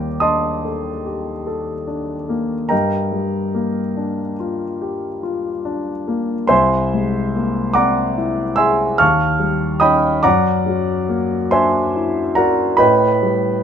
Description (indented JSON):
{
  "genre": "classical, impressionist solo piano",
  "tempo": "48 BPM (dotted quarters)",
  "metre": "9/8",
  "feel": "rubato",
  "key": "G minor",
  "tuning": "A4 = 440 Hz",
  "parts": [
    { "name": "warm concert grand piano", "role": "solo", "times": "0.0-13.6 s", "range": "C2 to F6", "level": "-16 LUFS", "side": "equal", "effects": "none" }
  ],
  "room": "light reverb",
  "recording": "none",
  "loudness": "-16 LUFS",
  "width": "side -8 dB against mid",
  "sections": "0.0-13.6 A section",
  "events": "none",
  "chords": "0.0 Ebmaj7#11; 2.7 Gm7; 6.5 Caug7; 9.0 Ebaug7; 10.3 Gbaug7; 12.8 A7(no3)",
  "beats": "0.22 1.47 | 2.72 3.96 5.24 | 6.51 7.76 9.01 | 10.25 11.54 12.81"
}